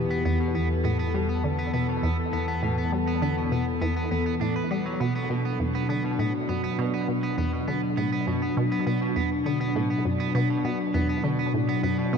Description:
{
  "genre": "ambient, sequencer-driven space music",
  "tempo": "101 BPM",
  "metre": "4/4",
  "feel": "straight",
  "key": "B minor",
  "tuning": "A4 = 441 Hz",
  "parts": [
    { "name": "sweeping resonant pad", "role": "sustained chords", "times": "0.0-12.2 s", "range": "B2 to A4", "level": "-27 LUFS", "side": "left 1 dB", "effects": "chorus" },
    { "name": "resonant blip pluck", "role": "riff", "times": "0.0-12.2 s", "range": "E2 to G3", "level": "-28 LUFS", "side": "equal", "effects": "chorus, tape echo" },
    { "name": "fat analog bass", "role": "bass", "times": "0.0-5.0 s", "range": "E2", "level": "-31 LUFS", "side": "equal", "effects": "tube saturation" },
    { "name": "electric guitar at the edge of break-up", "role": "arpeggios", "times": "0.1-12.2 s", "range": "B2 to B4", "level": "-32 LUFS", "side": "right 3 dB", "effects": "auto-pan, tape echo" }
  ],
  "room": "wet huge ambient reverb, RT60 7.8 s",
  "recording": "dark, warm production",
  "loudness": "-24 LUFS",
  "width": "side -6 dB against mid",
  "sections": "0.0-5.0 A section; 5.0-12.2 B section",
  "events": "filter sweep on synth arpeggio sound 0.0-5.0",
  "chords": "0.0 Em; 5.0 Bm"
}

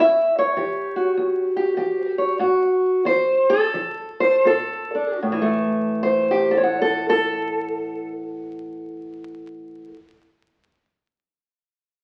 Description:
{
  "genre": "acoustic country blues, solo or duo",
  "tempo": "76-103 BPM",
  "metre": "4/4",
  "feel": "swing 64% on 8ths",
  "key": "A mixolydian",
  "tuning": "A4 = 441 Hz",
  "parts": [
    { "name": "fingerpicked steel-string acoustic guitar", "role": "solo", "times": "0.0-9.9 s", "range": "E2 to F#5", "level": "-21 LUFS", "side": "equal", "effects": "none" }
  ],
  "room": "wet large studio reverb, RT60 1.0 s",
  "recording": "very old 78 rpm record, vinyl crackle",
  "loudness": "-21 LUFS",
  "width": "mono",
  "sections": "0.0-5.2 A section; 5.2-8.4 B section",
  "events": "slowing down 0.0-5.2; stop 0.0-4.4",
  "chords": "0.0 A6; 4.4 Bb; 5.2 A5"
}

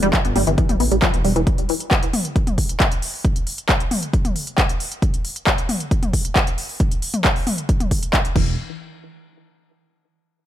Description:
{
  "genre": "driving peak-time techno",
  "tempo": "135 BPM",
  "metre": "4/4",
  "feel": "straight",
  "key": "E phrygian",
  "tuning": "A4 = 440 Hz",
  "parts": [
    { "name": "tight sequenced synth", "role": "riff", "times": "0.0-1.4, 8.4-8.6 s", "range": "E3 to B3", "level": "-22 LUFS", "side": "equal", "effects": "chorus, overdrive, sidechain pumping, ping-pong delay" },
    { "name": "dark detuned saw bass", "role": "bass", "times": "0.0-1.4, 8.4-8.6 s", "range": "E1 to A1", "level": "-22 LUFS", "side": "equal", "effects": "sidechain pumping" },
    { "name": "techno drum kit", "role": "drums", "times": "0.0-8.4 s", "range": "crash cymbal, handclaps, hi-hat, toms", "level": "-22 LUFS", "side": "left 1 dB", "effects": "overdrive, sidechain pumping on hats, sidechain pumping on toms, sidechain pumping on cymbals" },
    { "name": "electronic kick drum", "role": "drums", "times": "0.1-8.4 s", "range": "none", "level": "-19 LUFS", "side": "equal", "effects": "overdrive" }
  ],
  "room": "little or no reverb",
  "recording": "none",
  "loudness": "-17 LUFS",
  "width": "side -12 dB against mid",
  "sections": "0.0-8.6 A section; 8.6-10.4 B section",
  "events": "none",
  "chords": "0.0 Em; 8.4 N.C."
}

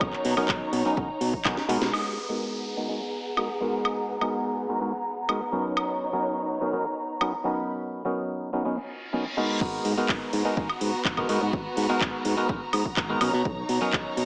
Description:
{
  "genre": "filtered disco house",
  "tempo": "125 BPM",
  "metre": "4/4",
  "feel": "straight",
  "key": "G# minor",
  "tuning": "A4 = 440 Hz",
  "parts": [
    { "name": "clav", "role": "accompaniment", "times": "0.0-14.3 s", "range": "F#3 to A#4", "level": "-32 LUFS", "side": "equal", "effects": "phaser, vintage 12-bit sampler grit, sidechain pumping, low-pass filter" },
    { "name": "rich studio violin section", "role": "sustained chords", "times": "0.0-14.3 s", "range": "B3 to B5", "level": "-33 LUFS", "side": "equal", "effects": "sidechain pumping, low-pass filter" },
    { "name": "modern bright fingered electric bass", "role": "bass", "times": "0.0-1.9, 9.6-14.3 s", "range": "G#1 to B2", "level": "-31 LUFS", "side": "equal", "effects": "sidechain pumping, low-pass filter" },
    { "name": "electronic kick drum", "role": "drums", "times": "0.0-1.5, 9.6-14.0 s", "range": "none", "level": "-34 LUFS", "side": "equal", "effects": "none" },
    { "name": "house drum kit", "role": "drums", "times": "0.0-14.3 s", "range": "crash cymbal, handclaps, hi-hat, snare drum, woodblock", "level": "-33 LUFS", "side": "equal", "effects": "sidechain pumping on perc, low-pass filter on perc, sidechain pumping on hats, low-pass filter on hats, low-pass filter on snare, sidechain pumping on cymbals, low-pass filter on cymbals, low-pass filter on room" },
    { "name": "downlifter and reverse cymbal", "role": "sound effects", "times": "1.9-13.5 s", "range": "none", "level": "-42 LUFS", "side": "equal", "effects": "none" }
  ],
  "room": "wet plate reverb, RT60 2.0 s",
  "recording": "dreamy mix soaked in reverb, small speaker sound",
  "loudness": "-27 LUFS",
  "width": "mono",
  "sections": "0.0-1.9 A section; 1.9-9.6 B section; 9.6-14.3 C section",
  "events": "drum fill 1.5-1.9; band accent 1.8; filter sweep on drum 1.9-9.6; reverse cymbal 8.9-9.6; drop 9.6-14.3",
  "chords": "0.0 Bmaj9; 1.9 G#m9; 5.5 Bmaj9; 9.6 G#m9; 13.2 Bmaj9"
}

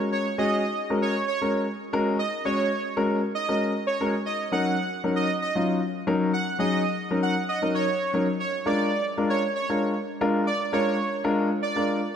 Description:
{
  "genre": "pop",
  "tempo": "116 BPM",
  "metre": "4/4",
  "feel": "straight",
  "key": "Eb minor",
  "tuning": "A4 = 438 Hz",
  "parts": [
    { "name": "warm concert grand piano", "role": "accompaniment", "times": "0.0-12.0 s", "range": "Gb3 to Db5", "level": "-25 LUFS", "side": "left 2 dB", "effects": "none" },
    { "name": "soft supersaw", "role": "melody", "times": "0.1-11.8 s", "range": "Db5 to Gb5", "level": "-27 LUFS", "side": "right 3 dB", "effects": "dub echo" }
  ],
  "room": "moderate lush hall reverb, RT60 2.6 s",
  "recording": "none",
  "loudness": "-23 LUFS",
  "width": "side -8 dB against mid",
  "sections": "0.0-12.2 A section",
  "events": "none",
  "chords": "0.0 Gbadd9; 4.1 Ebm7; 8.3 Bb7"
}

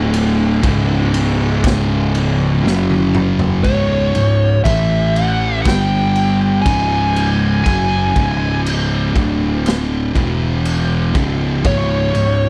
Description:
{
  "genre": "stoner and doom metal",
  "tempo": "60 BPM",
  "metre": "4/4",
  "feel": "straight",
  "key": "unclear",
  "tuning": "A4 = 440 Hz",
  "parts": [
    { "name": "fuzz guitar", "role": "riff", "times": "0.0-3.6 s", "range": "C#2 to F#3", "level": "-25 LUFS", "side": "equal", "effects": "distortion" },
    { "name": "thick fuzz guitar", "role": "riff", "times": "0.0-12.5 s", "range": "C#2 to A3", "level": "-21 LUFS", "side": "equal", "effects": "distortion" },
    { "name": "thick fuzz guitar", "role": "riff", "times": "0.0-12.5 s", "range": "C#2 to A3", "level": "-23 LUFS", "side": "equal", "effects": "distortion" },
    { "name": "fuzz picked electric bass", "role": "bass", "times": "0.0-12.5 s", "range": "C#1 to A1", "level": "-23 LUFS", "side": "equal", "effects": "overdrive" },
    { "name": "raw garage drum kit", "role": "drums", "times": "0.1-12.4 s", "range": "crash cymbal, kick drum, ride cymbal, snare drum, toms", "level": "-23 LUFS", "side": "equal", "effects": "none" },
    { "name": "fuzz lead guitar", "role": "melody", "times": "3.6-12.5 s", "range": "C#5 to G#5", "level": "-21 LUFS", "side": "equal", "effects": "wah, distortion, slapback echo" }
  ],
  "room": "small room ambience",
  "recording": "none",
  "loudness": "-16 LUFS",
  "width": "mono",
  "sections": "0.0-3.6 A section; 3.6-12.5 B section",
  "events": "drum fill 2.6-3.6",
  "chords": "0.0 D5; 0.6 C#5; 2.6 F#5; 3.6 C#5; 4.7 A5; 5.7 G5; 6.7 C#5; 9.2 D5; 10.2 E5; 11.2 C#5"
}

